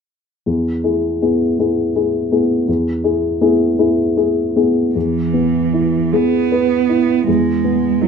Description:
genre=neoclassical piano and strings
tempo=53 BPM (dotted quarters)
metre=6/8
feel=uneven beats, rubato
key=E major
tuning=A4 = 440 Hz
part: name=dark upright piano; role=accompaniment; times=0.5-8.1 s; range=E2 to B4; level=-15 LUFS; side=left 2 dB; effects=none
part: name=rich cello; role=second line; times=5.0-8.1 s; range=E3 to B3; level=-16 LUFS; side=right 8 dB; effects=none
room=light reverb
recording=minimal, uncompressed stereo recording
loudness=-14 LUFS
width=side -6 dB against mid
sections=0.5-5.0 A section; 5.0-8.1 B section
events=none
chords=0.5 E

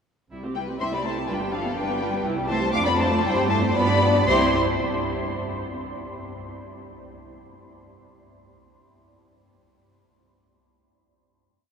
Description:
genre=quick classical-period movement for symphony orchestra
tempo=110-126 BPM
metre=2/4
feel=rubato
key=C major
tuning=A4 = 440 Hz
part: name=warm studio viola section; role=accompaniment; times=0.3-4.6 s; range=E3 to G4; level=-28 LUFS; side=equal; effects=none
part: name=rich studio double bass section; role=bass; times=0.3-4.6 s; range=G1 to G2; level=-29 LUFS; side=right 2 dB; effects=none
part: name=dark studio violin section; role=melody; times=0.5-4.6 s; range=F5 to D6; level=-27 LUFS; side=left 3 dB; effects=none
part: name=rich studio violin section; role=second line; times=0.6-4.6 s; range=A4 to F5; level=-27 LUFS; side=equal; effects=none
part: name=rich studio cello section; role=bass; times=0.6-4.6 s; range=F3 to D4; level=-30 LUFS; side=right 1 dB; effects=none
room=wet cathedral reverb, RT60 6.3 s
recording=minimal, uncompressed stereo recording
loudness=-21 LUFS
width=side -6 dB against mid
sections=0.3-4.3 A section; 4.3-5.3 final chord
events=slowing down 1.8-4.3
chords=0.3 C; 1.3 G7; 2.2 C; 2.7 Dm/F; 3.2 C/G; 3.7 G7; 4.3 C

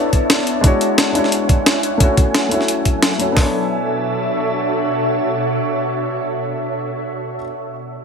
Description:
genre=liquid drum and bass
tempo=176 BPM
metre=4/4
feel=swing 53% on 16ths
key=B dorian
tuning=A4 = 444 Hz
part: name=dark concert grand piano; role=accompaniment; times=0.0-8.0 s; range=G#3 to C#5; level=-21 LUFS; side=left 2 dB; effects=low-pass filter, ping-pong delay
part: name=glassy FM pad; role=sustained chords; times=0.0-6.9 s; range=B2 to A5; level=-20 LUFS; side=equal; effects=ensemble chorus, built-in reverb, vintage 12-bit sampler grit
part: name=breakbeat sampler-style drum kit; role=drums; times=0.1-3.5 s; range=hi-hat, kick drum, snare drum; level=-14 LUFS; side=equal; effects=none
part: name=breakbeat sampler-style drum kit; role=drums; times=0.1-3.3 s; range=hi-hat, snare drum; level=-17 LUFS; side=equal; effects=none
room=moderate lush hall reverb, RT60 1.9 s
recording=none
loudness=-15 LUFS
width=side -6 dB against mid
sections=0.0-3.4 A section; 3.4-6.1 B section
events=filter sweep on grand piano 0.0-3.4; filter sweep on ambient pad 0.0-3.4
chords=0.0 Bm11; 0.6 E13; 2.0 F#m7; 3.4 Bm11

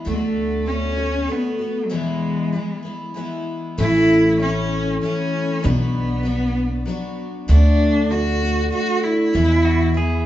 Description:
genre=acoustic folk duo or small band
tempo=97 BPM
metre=3/4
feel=straight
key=A major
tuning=A4 = 440 Hz
part: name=picked twelve-string acoustic guitar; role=accompaniment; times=0.0-10.3 s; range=E2 to F#4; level=-23 LUFS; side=left 2 dB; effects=none
part: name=warm cello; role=melody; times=0.1-10.3 s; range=F#3 to F#4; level=-21 LUFS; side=right 1 dB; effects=none
part: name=upright bass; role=bass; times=0.1-10.2 s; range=A1 to E2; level=-20 LUFS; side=equal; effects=none
part: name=pedal steel guitar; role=second line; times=9.7-10.3 s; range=F#4 to G#4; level=-26 LUFS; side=right 2 dB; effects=none
room=wet large studio reverb, RT60 1.2 s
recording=band playing live in one room, nothing above 7.8 kHz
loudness=-17 LUFS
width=side -13 dB against mid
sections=0.0-3.8 A section; 3.8-10.3 B section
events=break 1.9-3.8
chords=0.1 D6; 1.9 E; 3.8 A; 5.6 Bm; 7.5 D; 9.3 E

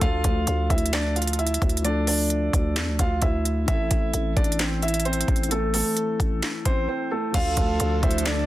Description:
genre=hip hop, trap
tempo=131 BPM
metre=4/4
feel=half-time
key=D minor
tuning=A4 = 441 Hz
part: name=warm concert grand piano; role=melody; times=0.0-8.5 s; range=A3 to F5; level=-27 LUFS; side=right 1 dB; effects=digital delay
part: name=dark concert grand piano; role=accompaniment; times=0.0-8.5 s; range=E3 to A4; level=-33 LUFS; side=left 5 dB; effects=none
part: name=growling 808-style bass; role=bass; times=0.0-8.5 s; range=A1 to E2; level=-25 LUFS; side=equal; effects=none
part: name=trap drum kit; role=drums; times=0.0-8.4 s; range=crash cymbal, handclaps, hi-hat, kick drum, snare drum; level=-24 LUFS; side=equal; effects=none
part: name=breathy flute-like synth lead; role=second line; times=7.3-8.5 s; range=A4 to D5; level=-32 LUFS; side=right 2 dB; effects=chorus, tremolo, digital delay
part: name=airy breathy pad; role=sustained chords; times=7.7-8.5 s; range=D3 to A4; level=-33 LUFS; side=equal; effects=chorus
room=little or no reverb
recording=dense, heavily limited modern master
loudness=-21 LUFS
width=side -15 dB against mid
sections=0.0-7.3 A section; 7.3-8.5 B section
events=break 6.9-7.3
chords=0.0 Dm; 3.7 Am; 7.3 Dm

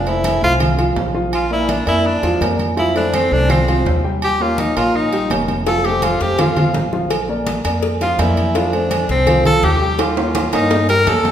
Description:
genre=latin, salsa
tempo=166 BPM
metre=4/4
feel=straight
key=F major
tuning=A4 = 440 Hz
part: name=clear tenor saxophone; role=melody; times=0.0-11.3 s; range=C4 to Bb4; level=-18 LUFS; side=equal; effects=none
part: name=dark upright piano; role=accompaniment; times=0.0-11.3 s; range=F3 to G5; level=-20 LUFS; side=equal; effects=none
part: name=upright bass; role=bass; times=0.0-11.3 s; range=F1 to G2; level=-21 LUFS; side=equal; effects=none
part: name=agogo bells and timbales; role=percussion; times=0.1-11.3 s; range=none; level=-23 LUFS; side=right 5 dB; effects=none
part: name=congas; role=percussion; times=0.1-11.3 s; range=none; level=-24 LUFS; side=left 1 dB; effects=none
part: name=cowbell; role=percussion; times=5.7-11.2 s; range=none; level=-25 LUFS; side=left 3 dB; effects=none
room=wet recital hall reverb, RT60 1.3 s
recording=recorded in a church or concert hall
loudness=-14 LUFS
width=side -10 dB against mid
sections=0.0-11.3 A section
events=tenor saxophone solo 0.0-11.3; drum fill 10.0-11.3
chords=0.0 F; 1.3 Bb; 2.8 F; 4.2 Eb7; 5.7 F; 7.1 Bb; 8.5 F; 10.0 Eb7

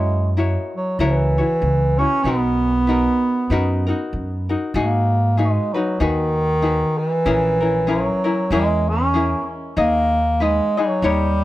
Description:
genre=Hawaiian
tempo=96 BPM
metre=4/4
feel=swing 58% on 8ths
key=B major, G# minor from 4.8 s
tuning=A4 = 441 Hz
part: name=warm bass clarinet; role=melody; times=0.0-11.4 s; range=D#3 to C#4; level=-20 LUFS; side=right 1 dB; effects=tape echo
part: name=tenor ukulele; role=accompaniment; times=0.0-11.4 s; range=C#4 to D#5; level=-23 LUFS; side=left 4 dB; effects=none
part: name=upright bass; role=bass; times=0.0-11.4 s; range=A#1 to G#2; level=-21 LUFS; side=equal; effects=none
room=little or no reverb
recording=dry, close 1970s-style studio recording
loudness=-17 LUFS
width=side -15 dB against mid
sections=0.0-4.8 A section; 4.8-11.4 B section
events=none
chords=0.0 F#7; 2.2 Bmaj7; 4.8 G#m7; 7.3 A#m7b5; 9.8 G#m/D#

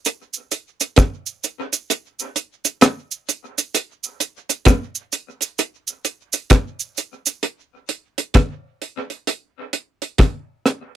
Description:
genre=reggae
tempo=65 BPM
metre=4/4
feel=swing 62% on 16ths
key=none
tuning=none
part: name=deep reggae drum kit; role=drums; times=0.1-10.9 s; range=hi-hat, kick drum, rim click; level=-16 LUFS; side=equal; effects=none
part: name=cabasa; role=percussion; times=0.1-7.4 s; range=none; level=-22 LUFS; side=right 7 dB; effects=none
room=moderate booth ambience, RT60 0.3 s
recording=dry, close 1970s-style studio recording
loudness=-19 LUFS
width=side -12 dB against mid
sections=0.0-11.0 A section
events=kick muted 1.9-3.7; part muted 7.4-11.0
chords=none

